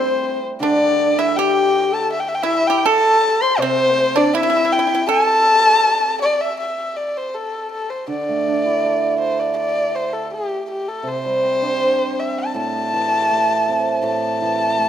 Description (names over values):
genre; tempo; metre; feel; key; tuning
chinese traditional, Chinese chamber ensemble; 81 BPM; 2/4; straight; A yu mode; A4 = 443 Hz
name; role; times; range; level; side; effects
dark erhu; melody; 0.0-14.9 s; G4 to C6; -18 LUFS; left 2 dB; none
mellow xiao; second line; 0.0-6.2 s; D4 to D5; -21 LUFS; left 3 dB; none
pipa; second line; 0.0-6.2 s; C4 to A4; -22 LUFS; right 8 dB; none
hammered dulcimer; accompaniment; 0.0-14.9 s; A2 to A4; -23 LUFS; right 4 dB; none
room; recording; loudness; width
moderate recital hall reverb, RT60 1.4 s; none; -16 LUFS; side -9 dB against mid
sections
0.0-6.6 A section; 6.6-14.9 B section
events
none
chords
none